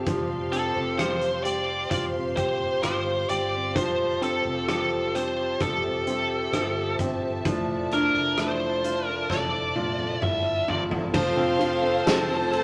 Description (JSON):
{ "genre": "pop ballad", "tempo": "65 BPM", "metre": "4/4", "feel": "straight", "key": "F major", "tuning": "A4 = 440 Hz", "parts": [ { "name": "clear baby grand piano", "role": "accompaniment", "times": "0.0-12.6 s", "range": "F3 to A4", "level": "-31 LUFS", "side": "equal", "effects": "none" }, { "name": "clear studio string section", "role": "sustained chords", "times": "0.0-12.6 s", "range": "F3 to C6", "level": "-36 LUFS", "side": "equal", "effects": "none" }, { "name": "picked steel-string acoustic guitar", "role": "arpeggios", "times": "0.0-12.6 s", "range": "F3 to C5", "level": "-36 LUFS", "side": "equal", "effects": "none" }, { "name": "mellow fretless electric bass", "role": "bass", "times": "0.0-12.6 s", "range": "F1 to G1", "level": "-39 LUFS", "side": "equal", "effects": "none" }, { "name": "huge arena drum kit", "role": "drums", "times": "0.1-12.6 s", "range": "crash cymbal, hi-hat, kick drum, ride cymbal, rim click, snare drum, toms", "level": "-33 LUFS", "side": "equal", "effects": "none" }, { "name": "bluesy overdriven lead guitar", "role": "melody", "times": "0.5-12.6 s", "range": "A4 to E5", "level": "-29 LUFS", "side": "equal", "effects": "distortion" }, { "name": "tambourine", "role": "percussion", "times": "11.1-12.6 s", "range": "none", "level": "-53 LUFS", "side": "equal", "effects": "none" }, { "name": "rich studio violin section", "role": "second line", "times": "11.2-12.6 s", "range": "F5 to A5", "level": "-32 LUFS", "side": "equal", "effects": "none" } ], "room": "wet studio ambience, RT60 0.5 s", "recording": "none", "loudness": "-26 LUFS", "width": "mono", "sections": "0.0-11.1 A section; 11.1-12.6 B section", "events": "drum fill 9.3-11.1", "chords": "0.1 Csus4/F; 3.8 Fadd9; 7.5 Dmadd9/F; 11.1 F" }